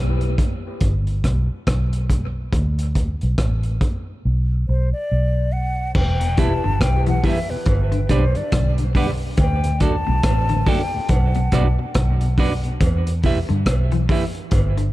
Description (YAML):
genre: dub reggae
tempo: 70 BPM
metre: 4/4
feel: swing 60% on 16ths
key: E minor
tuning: A4 = 444 Hz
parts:
  - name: vintage muted fingered electric bass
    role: bass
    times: 0.0-14.9 s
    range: E1 to G2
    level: -20 LUFS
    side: equal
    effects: none
  - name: crunchy breakbeat drum kit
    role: drums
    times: 0.2-14.9 s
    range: crash cymbal, hi-hat, kick drum, rim click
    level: -21 LUFS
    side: equal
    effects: none
  - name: breathy mellow silver concert flute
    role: melody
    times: 4.7-12.0 s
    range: B4 to A5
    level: -27 LUFS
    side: left 2 dB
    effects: dub echo
  - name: cowbell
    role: percussion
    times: 6.0-14.8 s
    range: none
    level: -34 LUFS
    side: right 3 dB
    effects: dub echo
  - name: mellow tonewheel organ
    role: accompaniment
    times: 6.2-12.7 s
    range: D2 to E4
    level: -31 LUFS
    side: left 2 dB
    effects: none
  - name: semi-hollow electric guitar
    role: accompaniment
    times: 6.4-14.2 s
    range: D4 to E5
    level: -28 LUFS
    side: right 5 dB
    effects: low-pass filter, dub echo
  - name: electric guitar at the edge of break-up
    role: arpeggios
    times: 6.4-14.9 s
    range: A2 to E3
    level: -29 LUFS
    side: left 6 dB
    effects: dub echo
  - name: reed electric piano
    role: stabs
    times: 6.4-6.6 s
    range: E4 to B4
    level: -33 LUFS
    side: left 3 dB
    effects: low-pass filter, dub echo
room: studio ambience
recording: dark, warm production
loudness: -17 LUFS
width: side -17 dB against mid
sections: 0.0-6.0 A section; 6.0-14.9 B section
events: break 0.0-6.0; drums muted 4.2-6.0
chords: 0.0 N.C.; 0.8 G; 2.5 D5; 4.2 Bm; 6.0 Em; 7.7 G; 9.4 D; 11.1 Bm; 12.8 Em